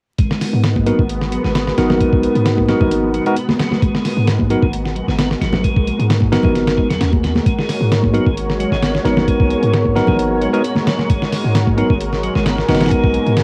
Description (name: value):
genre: breakbeat, breaks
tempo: 132 BPM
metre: 4/4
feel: swing 53% on 16ths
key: G# minor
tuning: A4 = 444 Hz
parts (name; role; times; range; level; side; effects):
- lush unison pad; sustained chords; 0.2-13.4 s; G#3 to C#5; -25 LUFS; equal; chorus, phaser, sidechain pumping, cassette tape
- tonewheel organ; riff; 0.2-13.4 s; F#3 to C#4; -28 LUFS; equal; slow rotary speaker, tube saturation, vintage 12-bit sampler grit, low-pass filter, cassette tape, analog delay
- warm 808-style bass; bass; 0.2-13.4 s; G#1 to G#2; -22 LUFS; equal; none
- dusty soul sampler-style drum kit; drums; 0.2-13.4 s; hi-hat, kick drum, snare drum; -21 LUFS; equal; none
- congas; percussion; 0.8-12.9 s; none; -25 LUFS; equal; none
- bell-like tine electric piano; stabs; 0.9-13.4 s; B3 to A#4; -20 LUFS; equal; cassette tape, analog delay
room: light reverb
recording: home recording on cassette, vinyl crackle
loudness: -16 LUFS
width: mono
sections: 0.2-13.4 A section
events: filter sweep on tonewheel organ 0.2-13.4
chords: 0.2 G#m9